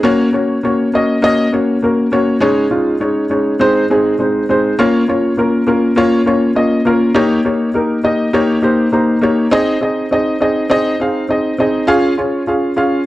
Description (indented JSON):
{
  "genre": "soul",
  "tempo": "101 BPM",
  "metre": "4/4",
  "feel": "straight",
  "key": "unclear",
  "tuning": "A4 = 440 Hz",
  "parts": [
    { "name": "warm upright piano", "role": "solo", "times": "0.0-13.0 s", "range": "Ab3 to Bb5", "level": "-12 LUFS", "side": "equal", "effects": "none" }
  ],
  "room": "moderate club reverb, RT60 0.7 s",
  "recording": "none",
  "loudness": "-12 LUFS",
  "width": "side -16 dB against mid",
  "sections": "0.0-13.1 A section",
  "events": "upright piano fill 8.6-9.5",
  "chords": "0.0 Gb; 2.4 Absus4; 3.6 Ab; 4.8 Bbm; 7.2 Eb7/Bb; 9.5 Ab; 11.9 Db"
}